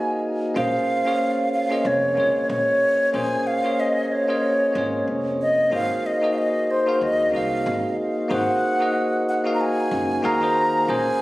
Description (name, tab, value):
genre	sunset chillout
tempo	93 BPM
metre	4/4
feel	swing 57% on 16ths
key	Bb minor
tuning	A4 = 440 Hz
part	wooden flute	melody	0.0-11.2 s	C5 to Bb5	-22 LUFS	equal	digital delay
part	bell-like tine electric piano	accompaniment	0.0-11.2 s	Bb3 to F5	-23 LUFS	equal	auto-pan, ping-pong delay
part	upright bass	bass	0.6-11.0 s	F1 to Eb2	-32 LUFS	equal	none
room	moderate lush hall reverb, RT60 2.0 s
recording	recorded on a phone in the room, studio reverb, compression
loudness	-19 LUFS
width	side -18 dB against mid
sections	0.6-11.2 A section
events	none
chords	0.0 Ab7; 0.6 Bbm7; 5.7 Ab7